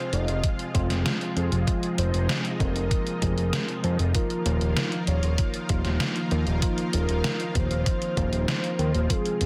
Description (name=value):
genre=synthwave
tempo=97 BPM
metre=4/4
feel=straight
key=unclear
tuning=A4 = 441 Hz
part: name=soft octave-layered synth lead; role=melody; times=0.0-9.5 s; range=Ab4 to Eb5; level=-35 LUFS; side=equal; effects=chorus, tape echo
part: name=analog string pad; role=sustained chords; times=0.0-9.5 s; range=C3 to F4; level=-36 LUFS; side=equal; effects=ensemble chorus, sidechain pumping
part: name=tine electric piano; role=stabs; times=0.0-9.5 s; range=F3 to Ab4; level=-34 LUFS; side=equal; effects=none
part: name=fat analog bass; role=bass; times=0.1-9.5 s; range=Eb1 to F2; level=-27 LUFS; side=equal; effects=none
part: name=detuned 8-bit digital drum machine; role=drums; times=0.1-9.5 s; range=hi-hat, snare drum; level=-32 LUFS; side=equal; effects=none
part: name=electronic kick drum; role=drums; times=0.4-9.2 s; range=none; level=-29 LUFS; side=equal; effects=none
room=light reverb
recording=dense, heavily limited modern master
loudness=-26 LUFS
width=mono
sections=0.0-9.5 A section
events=none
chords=0.0 Fm; 4.1 Ebsus2